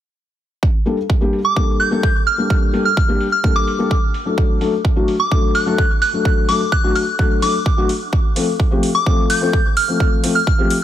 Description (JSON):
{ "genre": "EDM, festival progressive house", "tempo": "128 BPM", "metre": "4/4", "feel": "straight", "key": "G minor", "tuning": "A4 = 440 Hz", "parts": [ { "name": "electronic kick drum", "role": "drums", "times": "0.6-10.6 s", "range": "none", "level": "-16 LUFS", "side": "right 1 dB", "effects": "none" }, { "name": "felt-muted upright piano", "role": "accompaniment", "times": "0.9-10.8 s", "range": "F3 to A4", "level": "-19 LUFS", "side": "left 3 dB", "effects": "sidechain pumping" }, { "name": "electronic hi-hat", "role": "drums", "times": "0.9-10.8 s", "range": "none", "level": "-29 LUFS", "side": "right 2 dB", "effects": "overdrive, low-pass filter on hats" }, { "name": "soft synth bell", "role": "melody", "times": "1.4-10.7 s", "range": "D6 to G6", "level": "-20 LUFS", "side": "right 1 dB", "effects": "chorus, ping-pong delay" } ], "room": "light reverb, digital ambience", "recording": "none", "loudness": "-14 LUFS", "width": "side -11 dB against mid", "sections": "0.6-10.8 A section", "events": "none", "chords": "0.6 Gmadd9; 4.4 D; 8.1 F", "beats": "| 0.63 1.10 1.56 2.03 | 2.50 2.97 3.44 3.91 | 4.38 4.85 5.32 5.78 | 6.25 6.72 7.19 7.66 | 8.13 8.60 9.06 9.53 | 10.00 10.47" }